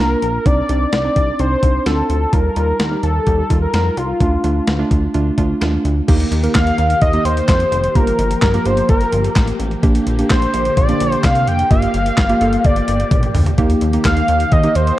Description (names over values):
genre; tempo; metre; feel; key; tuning
synth-pop; 128 BPM; 4/4; straight; unclear; A4 = 440 Hz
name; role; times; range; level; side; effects
wide unison lead; melody; 0.0-15.0 s; F4 to G5; -18 LUFS; left 1 dB; ping-pong delay
warbly dusty pluck; accompaniment; 0.0-15.0 s; G3 to Bb4; -21 LUFS; right 2 dB; chorus
chorused synth bass; bass; 0.0-14.9 s; F1 to F2; -18 LUFS; equal; none
clean 12-bit digital drum machine; drums; 0.2-15.0 s; crash cymbal, handclaps, hi-hat, kick drum, snare drum, toms; -17 LUFS; equal; overdrive
string machine, violas; sustained chords; 6.1-15.0 s; D3 to G4; -24 LUFS; left 1 dB; phaser, ensemble chorus
room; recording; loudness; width
moderate lush hall reverb, RT60 1.8 s; worn, warbling old tape, cassette tape, warbly pitch drift; -13 LUFS; side -15 dB against mid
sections
0.0-6.1 A section; 6.1-15.0 B section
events
drum fill 13.1-13.6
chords
0.5 Cmadd9; 2.3 Ebadd9; 4.2 Dm; 6.1 Eb; 8.0 Gm7; 9.8 Bb6; 11.7 Gm7; 13.6 Eb